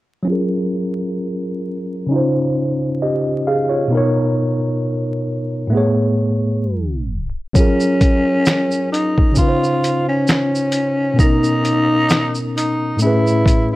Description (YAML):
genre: lo-fi hip hop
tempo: 66 BPM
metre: 4/4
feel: swing 55% on 16ths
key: F# major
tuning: A4 = 438 Hz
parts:
  - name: tine electric piano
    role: accompaniment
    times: 0.2-13.8 s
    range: A2 to E#5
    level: -18 LUFS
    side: equal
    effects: overdrive, fast stereo tremolo, cassette tape, low-pass filter
  - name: growling tenor saxophone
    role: melody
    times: 7.6-13.8 s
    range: C#4 to E#4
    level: -18 LUFS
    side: equal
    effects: none
  - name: lo-fi sampler-style drum kit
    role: drums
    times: 7.6-13.7 s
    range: finger snaps, hi-hat, kick drum, shaker, snare drum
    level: -16 LUFS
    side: equal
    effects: none
room: moderate studio reverb, RT60 0.6 s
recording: vinyl crackle, tape stop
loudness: -15 LUFS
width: side -17 dB against mid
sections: 0.3-7.6 A section; 7.6-13.8 B section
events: filter sweep on tine electric piano 0.3-7.6; tape stop 6.6-7.6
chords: 0.3 F#maj9; 2.1 C#maj9; 3.9 Bmaj9; 5.7 Amaj9; 7.6 F#maj9; 9.4 C#maj9; 11.2 Bmaj9; 13.0 Amaj9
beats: | 0.28 1.19 2.10 3.01 | 3.92 4.83 5.73 6.64 | 7.55 8.46 9.37 10.28 | 11.19 12.10 13.01